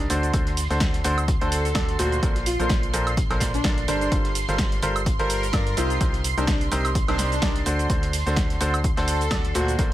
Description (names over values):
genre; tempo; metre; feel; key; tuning
piano house; 127 BPM; 4/4; swing 56% on 16ths; unclear; A4 = 441 Hz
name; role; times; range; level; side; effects
analog string pad; sustained chords; 0.0-9.9 s; C6; -32 LUFS; right 4 dB; ensemble chorus, sidechain pumping
clear grand piano; riff; 0.0-9.9 s; Bb2 to D5; -27 LUFS; equal; sidechain pumping
organ-like FM bass; bass; 0.0-9.9 s; G1 to G2; -27 LUFS; equal; sidechain pumping
crunchy breakbeat drum kit; drums; 0.0-9.9 s; hi-hat, snare drum; -41 LUFS; equal; none
punchy analog drum machine; drums; 0.0-9.9 s; hi-hat, shaker, snare drum, woodblock; -29 LUFS; right 1 dB; none
electronic kick drum; drums; 0.3-9.9 s; none; -25 LUFS; equal; none
airy dreamy lead; melody; 1.4-9.7 s; D4 to Bb4; -30 LUFS; equal; chorus, tape echo
room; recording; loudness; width
small room ambience; none; -20 LUFS; side -14 dB against mid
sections
0.0-9.9 A section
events
none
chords
0.1 D7; 2.2 Bbmaj9; 4.1 Gm11; 5.8 Cm7; 7.7 D7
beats
| 0.34 0.81 1.28 1.75 | 2.23 2.70 3.17 3.65 | 4.12 4.59 5.06 5.54 | 6.01 6.48 6.95 7.42 | 7.90 8.37 8.84 9.31 | 9.79